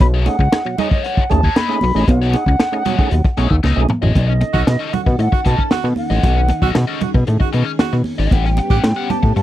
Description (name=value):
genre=funk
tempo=115 BPM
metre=4/4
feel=straight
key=unclear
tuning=A4 = 440 Hz
part: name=mellow jazz flute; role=melody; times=0.0-9.4 s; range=D#5 to B5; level=-22 LUFS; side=equal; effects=none
part: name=biting overdriven guitar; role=accompaniment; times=0.0-9.4 s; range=A3 to F#5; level=-25 LUFS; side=left 9 dB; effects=wah
part: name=tonewheel organ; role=stabs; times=0.0-4.1 s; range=B2 to G#4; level=-22 LUFS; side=right 5 dB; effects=overdrive, fast rotary speaker
part: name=fat analog bass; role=bass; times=0.0-9.4 s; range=G#1 to B2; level=-15 LUFS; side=equal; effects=none
part: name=crunchy breakbeat drum kit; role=drums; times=0.0-9.4 s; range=hi-hat, kick drum, snare drum, toms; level=-17 LUFS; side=equal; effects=none
part: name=congas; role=percussion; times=0.0-9.4 s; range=none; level=-23 LUFS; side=right 4 dB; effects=none
part: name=string machine, full ensemble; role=sustained chords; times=4.2-9.4 s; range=D#3 to A4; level=-26 LUFS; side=left 1 dB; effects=ensemble chorus
part: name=breathy tenor saxophone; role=second line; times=4.5-9.2 s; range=F#4 to G4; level=-23 LUFS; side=right 17 dB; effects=none
room=little or no reverb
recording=dry, close 1970s-style studio recording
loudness=-14 LUFS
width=side -14 dB against mid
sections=0.0-4.2 A section; 4.2-9.4 B section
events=drum fill 3.6-4.2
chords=0.0 B13; 4.2 B9; 8.3 A13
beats=| 0.00 0.52 1.04 1.56 | 2.08 2.60 3.12 3.63 | 4.16 4.67 5.19 5.71 | 6.23 6.75 7.28 7.79 | 8.32 8.84 9.36